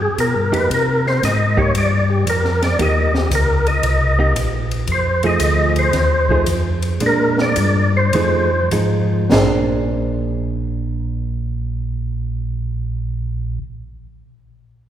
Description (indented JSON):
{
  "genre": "soul jazz organ trio",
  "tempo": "98-115 BPM",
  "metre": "4/4",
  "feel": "swing 67% on 8ths",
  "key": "Bb mixolydian",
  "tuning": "A4 = 440 Hz",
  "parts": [
    { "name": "percussive tonewheel organ", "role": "melody", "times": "0.0-8.7 s", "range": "G4 to Eb5", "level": "-18 LUFS", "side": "equal", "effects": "slow rotary speaker, chorus vibrato" },
    { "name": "mellow tonewheel organ", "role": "bass", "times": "0.0-13.6 s", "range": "Bb1 to C3", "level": "-19 LUFS", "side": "equal", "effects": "chorus vibrato, slow rotary speaker" },
    { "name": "open jazz drum kit", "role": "drums", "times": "0.2-9.5 s", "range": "hi-hat, kick drum, ride cymbal, snare drum, splash cymbal, toms", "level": "-24 LUFS", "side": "left 1 dB", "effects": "none" },
    { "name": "hollow-body jazz guitar", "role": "accompaniment", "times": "0.5-13.6 s", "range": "F3 to C5", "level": "-22 LUFS", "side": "right 2 dB", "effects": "none" }
  ],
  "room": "wet church reverb, RT60 2.5 s",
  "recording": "recorded in a church or concert hall",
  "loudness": "-15 LUFS",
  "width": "side -10 dB against mid",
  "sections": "0.0-9.3 A section; 9.3-14.2 B section",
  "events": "tonewheel organ solo 0.0-9.3; slowing down 4.9-9.3",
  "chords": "0.0 G7alt; 0.7 Cm7; 4.9 F7#9; 7.0 Bb7; 8.1 F7#9; 9.3 Bb9",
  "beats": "0.17 | 0.70 1.22 1.75 2.27 | 2.79 3.31 3.84 4.36 | 4.88 5.40 5.93 6.47 | 7.01 7.57 8.13 8.72 | 9.32 9.94 10.55 11.16 | 11.78 12.39 13.00 13.61"
}